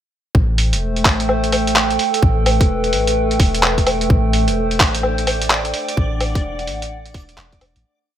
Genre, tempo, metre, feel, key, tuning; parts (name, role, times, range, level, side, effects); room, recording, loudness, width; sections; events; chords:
future garage; 128 BPM; 4/4; swing 63% on 16ths; A dorian; A4 = 440 Hz
soft 808-style bass; bass; 0.3-7.8 s; E1 to A1; -21 LUFS; equal; tube saturation, sidechain pumping
electronic kick drum; drums; 0.3-7.6 s; -17 LUFS; equal
warbly tape-like pad; sustained chords; 0.4-7.8 s; A3 to G5; -20 LUFS; right 1 dB; chorus, built-in reverb, sidechain pumping
lo-fi sampler-style drum kit; drums; 0.6-7.8 s; handclaps, hi-hat, woodblock; -18 LUFS; equal
backwards swelling texture; texture; 4.9-7.9 s; D4 to D5; -30 LUFS; right 2 dB; built-in reverb
light reverb, digital ambience; bright 1980s-style digital production; -14 LUFS; side -10 dB against mid
0.3-7.8 chorus
fade-out 5.3-7.8
0.3 Am7; 2.2 Gadd9; 4.1 Am7; 6.0 E9sus4